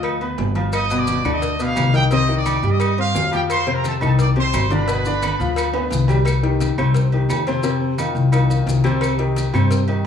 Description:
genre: latin, salsa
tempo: 174 BPM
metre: 4/4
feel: straight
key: C minor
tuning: A4 = 442 Hz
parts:
  - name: bright trumpet section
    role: melody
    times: 0.0-5.9 s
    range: G4 to Eb6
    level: -23 LUFS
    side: right 2 dB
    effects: none
  - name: clear grand piano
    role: accompaniment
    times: 0.0-10.1 s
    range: B2 to C6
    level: -22 LUFS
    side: left 3 dB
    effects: none
  - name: upright bass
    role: bass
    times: 0.0-10.0 s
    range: G1 to G2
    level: -20 LUFS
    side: left 1 dB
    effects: none
  - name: agogo bells and timbales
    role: percussion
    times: 0.0-10.1 s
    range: none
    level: -28 LUFS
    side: right 9 dB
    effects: none
  - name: claves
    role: percussion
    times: 0.0-9.7 s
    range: none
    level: -34 LUFS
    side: left 3 dB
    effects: none
  - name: congas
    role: percussion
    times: 0.0-10.1 s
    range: none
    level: -30 LUFS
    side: left 3 dB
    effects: none
  - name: cowbell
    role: percussion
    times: 0.0-9.9 s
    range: none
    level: -32 LUFS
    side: left 6 dB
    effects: none
  - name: maracas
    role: percussion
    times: 0.7-9.9 s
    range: none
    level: -36 LUFS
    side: left 3 dB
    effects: none
room: light reverb, small room ambience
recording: rough home demo mix, studio ambience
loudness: -16 LUFS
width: side -8 dB against mid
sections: 0.0-6.3 A section; 6.3-10.1 B section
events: drum fill 5.7-6.3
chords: 0.0 G7b13; 2.1 Cmadd9; 3.5 F9; 4.9 G7; 6.3 Cm; 7.6 F5; 9.0 Cm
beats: 0.04 0.39 | 0.73 1.08 1.42 1.77 | 2.12 2.46 2.81 3.15 | 3.50 3.84 4.19 4.53 | 4.88 5.22 5.57 5.91 | 6.26 6.60 6.95 7.29 | 7.64 7.98 8.33 8.67 | 9.02 9.36 9.71 10.05

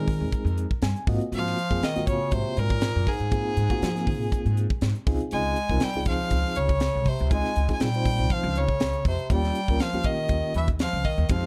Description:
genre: electric jazz fusion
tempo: 120 BPM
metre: 4/4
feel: swing 53% on 16ths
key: unclear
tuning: A4 = 440 Hz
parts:
  - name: bright violin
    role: melody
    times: 0.0-11.5 s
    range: Ab4 to Ab5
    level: -32 LUFS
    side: equal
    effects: none
  - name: clear bass clarinet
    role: second line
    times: 0.0-11.5 s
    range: Ab2 to Ab3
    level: -34 LUFS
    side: equal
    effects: none
  - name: reed electric piano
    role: accompaniment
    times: 0.0-11.5 s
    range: Ab3 to Ab5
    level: -34 LUFS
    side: equal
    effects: fast tremolo
  - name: upright bass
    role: bass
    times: 0.0-11.5 s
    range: C2 to F3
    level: -29 LUFS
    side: equal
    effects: none
  - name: crisp fusion drum kit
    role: drums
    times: 0.1-11.4 s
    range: hi-hat, kick drum, snare drum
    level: -30 LUFS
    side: equal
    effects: none
room: little or no reverb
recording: dark, warm production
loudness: -25 LUFS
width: mono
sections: 0.0-11.5 A section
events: reed electric piano fill 0.6-1.3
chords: 0.0 Fm7; 1.1 Ab13; 5.1 Dbmaj9; 9.3 Eb7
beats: 0.32 0.82 | 1.32 1.82 2.32 2.82 | 3.32 3.82 4.32 4.81 | 5.31 5.81 6.31 6.81 | 7.31 7.81 8.31 8.80 | 9.30 9.80 10.30 10.80 | 11.30

